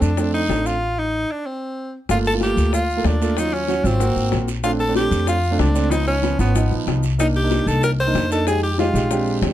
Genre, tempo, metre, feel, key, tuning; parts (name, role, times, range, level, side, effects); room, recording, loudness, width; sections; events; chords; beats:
Afro-Cuban jazz; 188 BPM; 4/4; straight; G minor; A4 = 441 Hz
edgy tenor saxophone; melody; 0.0-9.4 s; B3 to C5; -22 LUFS; equal
warm upright piano; accompaniment; 0.0-9.5 s; E#3 to G4; -23 LUFS; right 3 dB
upright bass; bass; 0.0-9.5 s; G1 to F2; -21 LUFS; left 1 dB
guiro; percussion; 0.0-9.5 s; -35 LUFS; right 7 dB
maracas; percussion; 0.0-9.5 s; -36 LUFS; left 6 dB
bongos; percussion; 0.2-9.5 s; -28 LUFS; left 10 dB
light reverb; dark, warm production; -17 LUFS; side -12 dB against mid
0.0-2.1 A section; 2.1-9.5 B section
stop 0.8-2.1
0.0 Bbmaj9 (rootless); 0.8 F7/A; 1.5 N.C.; 2.1 Gm9; 3.4 Ebm7; 4.0 Ab9; 4.6 Bbmaj9; 5.9 C#9; 7.2 Cm9; 8.5 Fm7
0.18 0.50 | 0.82 1.14 1.46 1.77 | 2.09 2.41 2.73 3.05 | 3.37 3.69 4.00 4.32 | 4.64 4.96 5.28 5.60 | 5.92 6.24 6.55 6.87 | 7.19 7.51 7.83 8.15 | 8.47 8.79 9.11 9.43